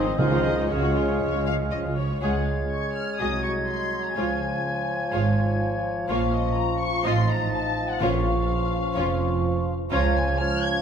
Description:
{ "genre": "quick classical-period movement for symphony orchestra", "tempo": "124 BPM", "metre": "4/4", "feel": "rubato", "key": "Db major", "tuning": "A4 = 440 Hz", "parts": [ { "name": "muted studio violin section", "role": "melody", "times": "0.0-10.8 s", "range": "Db5 to Ab6", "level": "-32 LUFS", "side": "left 4 dB", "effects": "none" }, { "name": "mellow clarinet", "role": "second line", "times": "0.0-10.8 s", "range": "Db4 to Eb5", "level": "-34 LUFS", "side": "equal", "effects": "none" }, { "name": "muted studio violin section", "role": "second line", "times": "0.0-10.1 s", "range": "Eb4 to F5", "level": "-33 LUFS", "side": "left 4 dB", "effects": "none" }, { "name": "silver concert flute", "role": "second line", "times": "0.0-10.8 s", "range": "Ab4 to A6", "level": "-32 LUFS", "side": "left 3 dB", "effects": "none" }, { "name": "warm oboe", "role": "second line", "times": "0.0-1.9 s", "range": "Eb5 to F5", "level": "-34 LUFS", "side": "right 1 dB", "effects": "none" }, { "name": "mellow bassoon", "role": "accompaniment", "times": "0.0-10.8 s", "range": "F3 to C4", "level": "-30 LUFS", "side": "right 2 dB", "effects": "none" }, { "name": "muted studio viola section", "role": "accompaniment", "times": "0.0-10.1 s", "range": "F3 to Gb4", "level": "-33 LUFS", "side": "right 2 dB", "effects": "none" }, { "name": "mellow French horn section", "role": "sustained chords", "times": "0.0-10.8 s", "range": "F3 to Gb4", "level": "-34 LUFS", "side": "left 3 dB", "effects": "none" }, { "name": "muted studio cello section", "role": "bass", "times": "0.0-10.3 s", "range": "C2 to Eb3", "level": "-32 LUFS", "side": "right 2 dB", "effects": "none" }, { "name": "muted studio double bass section", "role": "bass", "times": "0.0-10.3 s", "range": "F1 to Db2", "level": "-28 LUFS", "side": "right 2 dB", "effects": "none" }, { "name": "timpani", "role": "percussion", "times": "0.2-0.9, 8.0-8.7 s", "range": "Bb2 to Db3", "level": "-30 LUFS", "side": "equal", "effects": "none" } ], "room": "moderate concert hall reverb, RT60 2.1 s", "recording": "none", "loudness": "-22 LUFS", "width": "side -7 dB against mid", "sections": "0.0-2.2 A section; 2.2-10.8 B section", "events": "none", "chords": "0.2 Db; 3.2 Ab7/C; 4.2 Db; 6.1 Bbm; 7.1 F7/A; 8.0 Bbm; 9.9 Db" }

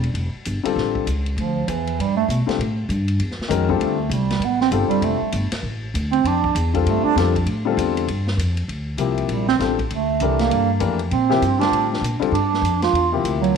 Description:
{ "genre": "modal jazz", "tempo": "197 BPM", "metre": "4/4", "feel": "swing 61% on 8ths", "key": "D dorian, G dorian from 8.7 s", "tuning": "A4 = 440 Hz", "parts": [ { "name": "upright bass", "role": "bass", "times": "0.0-13.6 s", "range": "E1 to B2", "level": "-23 LUFS", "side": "equal", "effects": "none" }, { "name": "vintage drum kit", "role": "drums", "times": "0.0-13.5 s", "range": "hi-hat, kick drum, ride cymbal, snare drum", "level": "-31 LUFS", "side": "left 1 dB", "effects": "none" }, { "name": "warm concert grand piano", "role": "accompaniment", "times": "0.6-13.5 s", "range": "C3 to Bb4", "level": "-22 LUFS", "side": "left 10 dB", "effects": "none" }, { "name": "breathy bass clarinet", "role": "second line", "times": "1.4-7.2, 9.3-13.6 s", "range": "E3 to F4", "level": "-21 LUFS", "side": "right 8 dB", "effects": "none" } ], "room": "wet echo chamber reverb, RT60 1.3 s, small room ambience", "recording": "1960s-style stereo with parts hard left and right", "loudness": "-18 LUFS", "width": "side -6 dB against mid", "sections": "0.0-8.7 A section; 8.7-13.6 A section", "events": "bass clarinet solo 0.0-13.6", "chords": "0.0 Dm11; 8.7 Gm11" }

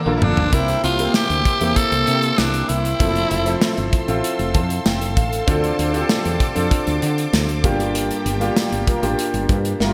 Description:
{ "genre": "1980s-style pop", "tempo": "97 BPM", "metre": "4/4", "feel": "straight", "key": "C mixolydian", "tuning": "A4 = 445 Hz", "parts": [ { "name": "breathy tenor saxophone", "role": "melody", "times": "0.0-3.9 s", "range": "D3 to A4", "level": "-23 LUFS", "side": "equal", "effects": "delay" }, { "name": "warm concert grand piano", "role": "accompaniment", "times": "0.0-9.9 s", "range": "G2 to A5", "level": "-25 LUFS", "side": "equal", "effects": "none" }, { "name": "string machine, violas", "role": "sustained chords", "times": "0.0-9.9 s", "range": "Bb3 to E6", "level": "-31 LUFS", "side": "equal", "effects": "phaser, ensemble chorus" }, { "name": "woody fretless electric bass", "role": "bass", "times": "0.1-9.9 s", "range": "F1 to D3", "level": "-25 LUFS", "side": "equal", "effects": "none" }, { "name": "mellow synth brass", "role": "stabs", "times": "0.2-0.5, 8.9-9.9 s", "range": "F3 to Bb4", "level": "-30 LUFS", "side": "equal", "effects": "chorus" }, { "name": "modern studio drum kit", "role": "drums", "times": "0.2-9.9 s", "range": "hi-hat, kick drum, snare drum, tambourine, toms", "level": "-23 LUFS", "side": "equal", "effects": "gated reverb" } ], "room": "wet lush hall reverb, RT60 1.6 s, studio reverb", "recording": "bright 1980s-style digital production", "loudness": "-19 LUFS", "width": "mono", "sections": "0.5-9.9 A section", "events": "drum fill 0.0-0.5; grand piano fill 4.2-5.5; band accent 8.0-9.9", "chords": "0.0 Bbmaj7; 0.5 C7; 3.0 Fmaj7; 5.5 Dm7; 7.6 Gm7" }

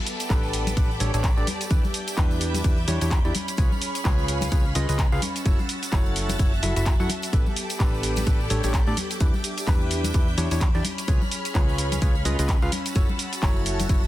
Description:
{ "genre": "piano house", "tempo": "128 BPM", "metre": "4/4", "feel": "swing 58% on 16ths", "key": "A mixolydian", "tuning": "A4 = 440 Hz", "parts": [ { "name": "string machine, violins", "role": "sustained chords", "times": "0.0-14.1 s", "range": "A4 to A6", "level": "-35 LUFS", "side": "equal", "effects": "ensemble chorus, sidechain pumping" }, { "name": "muted studio string section", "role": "texture", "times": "0.0-14.1 s", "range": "B3 to B5", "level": "-34 LUFS", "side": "right 1 dB", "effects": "sidechain pumping" }, { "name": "house drum kit", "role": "drums", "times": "0.1-14.0 s", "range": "handclaps, hi-hat, shaker", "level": "-30 LUFS", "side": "equal", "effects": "none" }, { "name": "tambourine and congas", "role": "percussion", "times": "0.2-14.1 s", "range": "none", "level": "-35 LUFS", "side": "left 4 dB", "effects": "none" }, { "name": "percussive organ stab", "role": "riff", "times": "0.3-14.0 s", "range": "D4 to F#5", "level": "-31 LUFS", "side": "equal", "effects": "chorus, sidechain pumping, dub echo" }, { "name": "plucky analog bass", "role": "bass", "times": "0.3-14.1 s", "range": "F#1 to A2", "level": "-26 LUFS", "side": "equal", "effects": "sidechain pumping" }, { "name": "electronic kick drum", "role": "drums", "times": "0.3-14.0 s", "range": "none", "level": "-22 LUFS", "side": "equal", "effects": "none" } ], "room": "little or no reverb", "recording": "dense, heavily limited modern master", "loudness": "-21 LUFS", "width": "side -15 dB against mid", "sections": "0.0-14.1 A section", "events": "none", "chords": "0.0 A9sus4; 1.7 Em7; 3.3 C#7; 5.2 F#m7; 7.3 A9sus4; 9.2 Em7; 10.8 C#7; 12.7 F#m7" }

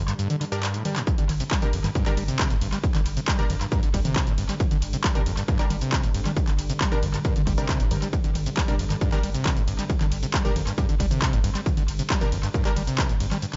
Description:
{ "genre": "driving peak-time techno", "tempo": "136 BPM", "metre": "4/4", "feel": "straight", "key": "unclear", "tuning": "A4 = 444 Hz", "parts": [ { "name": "screaming distorted acid line", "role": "riff", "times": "0.0-13.6 s", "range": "F2 to G3", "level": "-32 LUFS", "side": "equal", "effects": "distortion, chorus, sidechain pumping, tape echo" }, { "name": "warm sub bass", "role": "bass", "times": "0.0-13.6 s", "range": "G1", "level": "-32 LUFS", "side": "equal", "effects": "overdrive, sidechain pumping, low-pass filter" }, { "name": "deep dark ambient pad", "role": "drone", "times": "0.0-13.6 s", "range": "G2 to D3", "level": "-39 LUFS", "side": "equal", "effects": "none" }, { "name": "techno drum kit", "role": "drums", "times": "0.1-13.6 s", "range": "handclaps, hi-hat, ride cymbal, shaker, toms", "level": "-32 LUFS", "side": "equal", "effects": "overdrive, sidechain pumping on hats, studio reverb, sidechain pumping on perc, sidechain pumping on toms, sidechain pumping on cymbals, tape echo" }, { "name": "supersaw stab", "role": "stabs", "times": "0.5-12.7 s", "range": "G3 to Bb4", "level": "-37 LUFS", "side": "equal", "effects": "sidechain pumping, tape echo" }, { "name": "electronic kick drum", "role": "drums", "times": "1.1-13.1 s", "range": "none", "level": "-27 LUFS", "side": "equal", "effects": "overdrive, studio reverb" } ], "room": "digital ambience", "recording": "echo-heavy mix, nothing above 7.7 kHz", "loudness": "-24 LUFS", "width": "mono", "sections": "0.0-13.6 A section", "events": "drum fill 0.6-1.1", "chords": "0.0 Gm" }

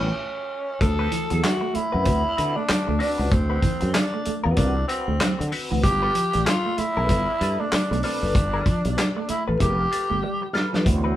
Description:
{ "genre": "funk", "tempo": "96 BPM", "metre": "4/4", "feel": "swing 60% on 16ths", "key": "unclear", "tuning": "A4 = 440 Hz", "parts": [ { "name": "growling tenor saxophone", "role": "melody", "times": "0.0-10.5 s", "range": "C4 to A4", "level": "-25 LUFS", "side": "equal", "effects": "none" }, { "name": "direct-recorded clean electric guitar", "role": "accompaniment", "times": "0.0-11.2 s", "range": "C4 to B4", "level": "-30 LUFS", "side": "left 3 dB", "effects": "wah" }, { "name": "overdriven tonewheel organ", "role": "stabs", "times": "0.0-0.1, 10.9-11.2 s", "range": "E3 to C4", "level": "-30 LUFS", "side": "right 3 dB", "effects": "chorus vibrato, slow rotary speaker" }, { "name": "fretless electric bass", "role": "bass", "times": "0.0-11.1 s", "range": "F1 to D3", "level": "-25 LUFS", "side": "equal", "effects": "none" }, { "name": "warm soul drum kit", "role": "drums", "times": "0.8-11.0 s", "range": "handclaps, hi-hat, kick drum, snare drum", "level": "-24 LUFS", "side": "equal", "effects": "none" }, { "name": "mellow electric guitar", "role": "riff", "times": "1.0-11.1 s", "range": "E3 to D4", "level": "-31 LUFS", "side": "right 4 dB", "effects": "none" } ], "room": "moderate large studio reverb, RT60 0.8 s", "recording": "band playing live in one room", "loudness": "-20 LUFS", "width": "side -13 dB against mid", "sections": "0.8-11.2 A section", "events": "band accent 0.0-0.8; drum fill 10.2-10.9", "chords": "0.0 A9; 0.8 D13; 5.8 G9" }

